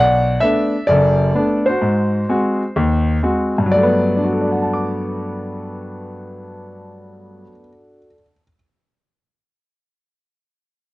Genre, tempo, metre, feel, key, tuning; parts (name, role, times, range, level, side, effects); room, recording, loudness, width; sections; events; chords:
solo jazz; 128 BPM; 4/4; swing 67% on 8ths; G major; A4 = 438 Hz
clear concert grand piano; solo; 0.0-8.5 s; F#1 to D6; -15 LUFS; equal
light reverb; home recording on cassette, nothing above 10.5 kHz; -15 LUFS; side -18 dB against mid
0.0-3.7 A section; 3.7-7.5 B section
0.0 Bm7; 1.8 Ab7; 3.7 Gmaj9